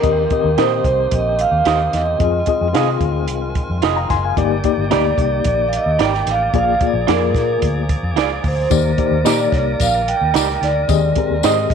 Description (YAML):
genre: uptempo 1960s-style soul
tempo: 111 BPM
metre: 4/4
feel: straight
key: Eb major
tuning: A4 = 440 Hz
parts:
  - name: vibraphone with soft mallets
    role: melody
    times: 0.0-11.7 s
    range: Bb4 to G5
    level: -18 LUFS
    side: right 3 dB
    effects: none
  - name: reed electric piano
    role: accompaniment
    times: 0.0-11.7 s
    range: G2 to C6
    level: -20 LUFS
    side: left 15 dB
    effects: fast tremolo
  - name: tonewheel organ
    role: sustained chords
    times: 0.0-11.7 s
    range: Eb3 to D5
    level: -27 LUFS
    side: left 1 dB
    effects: overdrive, lush chorus
  - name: vintage muted fingered electric bass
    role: bass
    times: 0.0-11.7 s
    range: F1 to C3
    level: -21 LUFS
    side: left 1 dB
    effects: none
  - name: compact cocktail drum kit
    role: drums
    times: 0.0-11.7 s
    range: hi-hat, kick drum, snare drum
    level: -21 LUFS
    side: right 3 dB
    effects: none
  - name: electric guitar through a small old amp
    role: stabs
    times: 0.6-11.6 s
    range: Eb4 to Eb5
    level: -22 LUFS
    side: right 14 dB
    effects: spring reverb
  - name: tambourine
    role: percussion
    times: 8.7-11.6 s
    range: none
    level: -27 LUFS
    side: left 15 dB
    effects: none
room: light reverb, studio reverb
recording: 1960s-style stereo with parts hard left and right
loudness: -14 LUFS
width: side -7 dB against mid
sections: 0.0-11.7 A section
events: reed electric piano fill 3.6-4.4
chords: 0.0 Eb6; 2.2 Fm7; 4.4 Ebmaj7/G; 6.5 Bb7; 8.7 Ebmaj7; 10.9 Abmaj7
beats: | 0.04 0.58 1.12 1.66 | 2.21 2.75 3.29 3.83 | 4.37 4.92 5.46 6.00 | 6.54 7.08 7.63 8.17 | 8.71 9.26 9.80 10.34 | 10.89 11.43